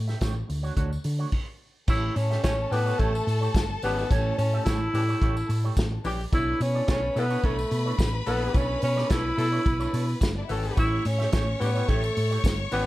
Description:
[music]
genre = disco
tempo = 108 BPM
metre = 4/4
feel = straight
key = unclear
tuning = A4 = 440 Hz
[part]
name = hollow-body short-scale fingered electric bass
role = bass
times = 0.0-12.9 s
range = G1 to D3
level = -28 LUFS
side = equal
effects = none
[part]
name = electric guitar with an envelope filter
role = accompaniment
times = 0.1-12.6 s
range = A3 to E5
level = -36 LUFS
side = right 6 dB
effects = lush chorus
[part]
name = warm soul drum kit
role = drums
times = 0.1-12.9 s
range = crash cymbal, hi-hat, kick drum, snare drum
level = -28 LUFS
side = equal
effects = none
[part]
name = tambourine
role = percussion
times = 0.1-12.9 s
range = none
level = -48 LUFS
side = left 2 dB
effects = none
[part]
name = breathy tenor saxophone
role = melody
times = 1.9-12.9 s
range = A3 to E4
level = -28 LUFS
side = equal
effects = none
[part]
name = clear studio string section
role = second line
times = 1.9-12.9 s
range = D4 to C#6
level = -35 LUFS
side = left 4 dB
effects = none
[part]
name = mellow horn section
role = stabs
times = 2.7-12.9 s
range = E3 to A4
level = -34 LUFS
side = left 3 dB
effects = none
[sound]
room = light reverb, studio ambience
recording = dark, warm production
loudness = -23 LUFS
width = side -17 dB against mid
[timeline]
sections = 0.0-1.9 A section; 1.9-12.9 B section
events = stop 1.3-1.9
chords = 0.5 Dmaj7; 1.9 A7; 6.3 Bm11; 10.8 A7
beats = 0.21 0.77 1.32 | 1.88 2.43 2.99 3.54 | 4.10 4.66 5.21 5.77 | 6.32 6.88 7.43 7.99 | 8.54 9.10 9.66 10.21 | 10.77 11.33 11.88 12.44

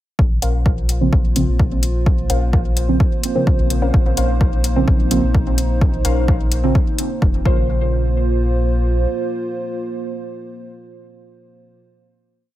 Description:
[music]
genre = dub techno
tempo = 128 BPM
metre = 4/4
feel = straight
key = Bb minor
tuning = A4 = 444 Hz
[part]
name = dark analog pad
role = sustained chords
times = 0.8-11.8 s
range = Bb3 to C5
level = -25 LUFS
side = right 2 dB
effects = chorus, sidechain pumping
[part]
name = soft dub sub bass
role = bass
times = 0.2-9.1 s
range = F1 to Bb1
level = -19 LUFS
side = equal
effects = tube saturation, sidechain pumping
[part]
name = electronic kick drum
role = drums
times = 0.2-7.5 s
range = none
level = -17 LUFS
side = equal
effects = overdrive
[part]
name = warbly dusty pluck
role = riff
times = 0.4-11.8 s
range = Db4 to F5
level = -28 LUFS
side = left 3 dB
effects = chorus, sidechain pumping, dub echo
[part]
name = electronic hi-hat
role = drums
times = 0.4-7.1 s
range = none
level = -25 LUFS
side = left 2 dB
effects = overdrive
[part]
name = deep mellow chord stab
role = stabs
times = 1.0-11.8 s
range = Db3 to C5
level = -22 LUFS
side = right 2 dB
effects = chorus, phaser, sidechain pumping, dub echo
[sound]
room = light reverb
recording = echo-heavy mix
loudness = -15 LUFS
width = side -14 dB against mid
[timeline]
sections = 0.2-7.7 groove; 7.7-11.4 final hit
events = none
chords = 0.2 Bbmadd9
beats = | 0.19 0.66 1.13 1.60 | 2.06 2.53 3.00 3.47 | 3.94 4.41 4.88 5.35 | 5.82 6.28 6.75 7.22 | 7.69 8.16 8.63 9.10 | 9.56 10.03 10.50 10.97

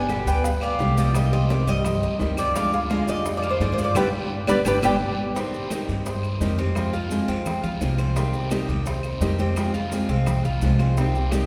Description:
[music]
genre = latin, Cuban son and guajira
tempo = 171 BPM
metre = 4/4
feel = straight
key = C minor from 5.4 s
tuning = A4 = 440 Hz
[part]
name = Cuban tres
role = melody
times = 0.0-5.0 s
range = B4 to Ab5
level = -28 LUFS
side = equal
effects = none
[part]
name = oud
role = second line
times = 0.0-4.9 s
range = D3 to B3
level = -34 LUFS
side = equal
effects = none
[part]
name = picked steel-string acoustic guitar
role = accompaniment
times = 0.0-11.5 s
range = B2 to G4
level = -31 LUFS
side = equal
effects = none
[part]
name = Cuban tres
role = arpeggios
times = 0.0-11.5 s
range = C4 to F5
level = -32 LUFS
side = equal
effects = none
[part]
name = upright bass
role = bass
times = 0.0-11.4 s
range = G1 to G2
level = -27 LUFS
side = equal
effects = none
[part]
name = bongos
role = percussion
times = 0.1-11.5 s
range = none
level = -38 LUFS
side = equal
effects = none
[part]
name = claves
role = percussion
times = 0.1-11.5 s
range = none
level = -45 LUFS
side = equal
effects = none
[part]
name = congas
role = percussion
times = 0.1-11.5 s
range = none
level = -35 LUFS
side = equal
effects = none
[part]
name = guiro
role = percussion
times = 0.1-11.5 s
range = none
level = -43 LUFS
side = equal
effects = none
[part]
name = maracas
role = percussion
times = 0.1-11.5 s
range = none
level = -46 LUFS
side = equal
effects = none
[sound]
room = wet church reverb, RT60 3.0 s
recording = recorded in a church or concert hall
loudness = -23 LUFS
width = mono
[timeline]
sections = 0.0-5.4 A section; 5.4-11.5 B section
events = drum fill 4.0-5.4; band accent 4.0-5.4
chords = 0.0 G; 1.1 Cm; 2.6 Ddim; 4.0 G; 5.4 Cm; 6.8 Fm; 8.2 Cm; 9.6 Fm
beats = 0.09 0.44 0.80 | 1.15 1.50 1.85 2.20 | 2.55 2.90 3.25 3.60 | 3.96 4.31 4.66 5.01 | 5.36 5.71 6.06 6.41 | 6.76 7.11 7.46 7.82 | 8.17 8.52 8.87 9.22 | 9.57 9.92 10.27 10.62 | 10.97 11.32

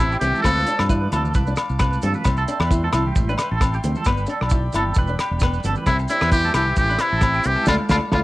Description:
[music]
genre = highlife guitar band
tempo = 133 BPM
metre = 4/4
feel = swing 54% on 16ths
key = C major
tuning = A4 = 442 Hz
[part]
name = trumpet with metal mute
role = melody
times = 0.0-0.9, 5.9-8.2 s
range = E4 to A4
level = -21 LUFS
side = equal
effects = cassette tape
[part]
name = raspy tenor saxophone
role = second line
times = 0.0-0.9, 5.9-8.2 s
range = C3 to F3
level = -34 LUFS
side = right 2 dB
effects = cassette tape, plate reverb, analog delay
[part]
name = fingerpicked acoustic archtop guitar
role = accompaniment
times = 0.0-8.2 s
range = A3 to F4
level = -28 LUFS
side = left 2 dB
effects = cassette tape, plate reverb
[part]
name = combo organ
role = sustained chords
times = 0.0-8.2 s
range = D5 to D6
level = -35 LUFS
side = left 1 dB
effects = wide subtle chorus, cassette tape, plate reverb
[part]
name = clean electric guitar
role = arpeggios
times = 0.0-8.2 s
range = F4 to D5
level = -28 LUFS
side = right 4 dB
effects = tremolo, cassette tape, plate reverb, analog delay
[part]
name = fingered electric bass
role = bass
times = 0.0-8.2 s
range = E1 to G2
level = -23 LUFS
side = equal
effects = none
[part]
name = maracas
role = percussion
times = 0.0-8.2 s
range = none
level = -39 LUFS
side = right 4 dB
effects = none
[part]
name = damped 70s drum kit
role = drums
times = 0.2-8.2 s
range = hi-hat, kick drum, rim click, snare drum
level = -21 LUFS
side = equal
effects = cassette tape
[part]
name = congas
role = percussion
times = 0.2-8.2 s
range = none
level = -31 LUFS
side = right 1 dB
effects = none
[part]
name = agogo bells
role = percussion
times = 0.5-8.2 s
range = none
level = -27 LUFS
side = left 4 dB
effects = none
[sound]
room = little or no reverb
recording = home recording on cassette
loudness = -17 LUFS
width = side -18 dB against mid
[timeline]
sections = 0.0-8.2 A section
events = band accent 7.7-8.2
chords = 0.4 Dm; 2.3 C; 4.1 G; 5.9 C; 7.7 Dm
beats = 0.00 | 0.45 0.90 1.35 1.80 | 2.25 2.71 3.16 3.61 | 4.06 4.51 4.97 5.42 | 5.87 6.32 6.77 7.22 | 7.67 8.13

